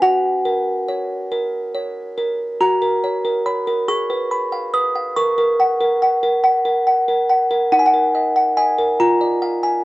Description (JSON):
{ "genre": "classical, lullaby for music box", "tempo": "47 BPM (dotted quarters)", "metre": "6/8", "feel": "straight", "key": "F# major", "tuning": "A4 = 442 Hz", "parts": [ { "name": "music box", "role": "solo", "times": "0.0-9.8 s", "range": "D#4 to D#6", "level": "-16 LUFS", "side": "equal", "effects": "cassette tape" } ], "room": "moderate spring reverb, RT60 1.3 s", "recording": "home recording on cassette", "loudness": "-16 LUFS", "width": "side -19 dB against mid", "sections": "0.0-2.6 A section; 2.6-9.8 B section", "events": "none", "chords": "0.0 F#; 3.9 C#7/G#; 5.2 F#/A#; 7.7 D#m; 9.0 A#7/E#" }